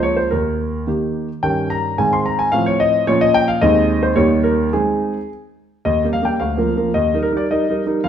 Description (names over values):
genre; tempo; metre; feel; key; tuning
classical-period piano sonatina; 109 BPM; 2/4; straight; Ab major; A4 = 440 Hz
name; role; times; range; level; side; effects
clear grand piano; solo; 0.0-8.1 s; Db2 to C6; -15 LUFS; equal; none
room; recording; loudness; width
wet stone room reverb, RT60 1.1 s; heard from further back in the room; -15 LUFS; side -9 dB against mid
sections
0.0-5.8 A section; 5.8-8.1 B section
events
none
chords
0.3 Eb; 1.4 Eb7/G; 2.0 Ab; 2.5 F7/A; 3.1 Bbm; 3.6 Ab/Eb; 4.2 Eb7; 4.7 Ab; 5.8 Eb; 6.4 Bb/D; 7.0 Eb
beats
| 0.30 0.87 | 1.43 1.99 | 2.53 3.08 | 3.62 4.17 | 4.72 5.29 | 5.85 6.40 | 6.95 7.50 | 8.04